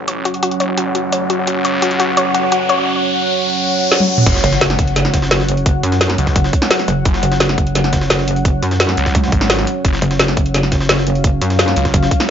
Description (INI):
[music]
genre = dark technical drum and bass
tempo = 172 BPM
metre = 4/4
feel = straight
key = F# harmonic minor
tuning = A4 = 440 Hz
[part]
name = deep dark ambient pad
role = sustained chords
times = 0.0-12.3 s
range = F#3 to F#5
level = -19 LUFS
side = right 1 dB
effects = chorus, built-in reverb, sidechain pumping
[part]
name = phased detuned saw bass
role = bass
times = 0.0-11.9 s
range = F#1 to C#2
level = -21 LUFS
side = equal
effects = phaser, tube saturation, high-pass filter
[part]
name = riser and impact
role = sound effects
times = 0.9-5.7 s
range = none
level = -22 LUFS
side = equal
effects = none
[part]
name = analog pluck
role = arpeggios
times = 0.1-2.8 s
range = F#4 to C#5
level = -19 LUFS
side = left 2 dB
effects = chorus, sidechain pumping, digital delay
[part]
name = drum and bass drum kit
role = drums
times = 0.1-12.3 s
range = crash cymbal, hi-hat, snare drum, toms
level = -17 LUFS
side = equal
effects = none
[part]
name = electronic kick drum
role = drums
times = 4.3-12.2 s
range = none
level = -16 LUFS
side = equal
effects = none
[part]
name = jungle sampler-style drum kit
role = drums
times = 4.3-12.3 s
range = hi-hat, snare drum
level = -25 LUFS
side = equal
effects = overdrive, high-pass filter on hats, high-pass filter on snare
[part]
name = metallic wobble bass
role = bass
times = 4.4-12.1 s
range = F#1 to F#2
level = -17 LUFS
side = equal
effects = distortion, chorus
[sound]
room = light reverb, digital ambience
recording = nothing above 7.5 kHz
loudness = -13 LUFS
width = side -8 dB against mid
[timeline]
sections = 0.0-4.3 A section; 4.3-12.3 B section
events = build-up 0.0-4.3; filter sweep on synth arpeggio sound 0.0-4.3; riser 0.9-4.3; drum fill 3.9-4.3; drop 4.3-12.3; impact 4.3-5.7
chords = 0.0 F#5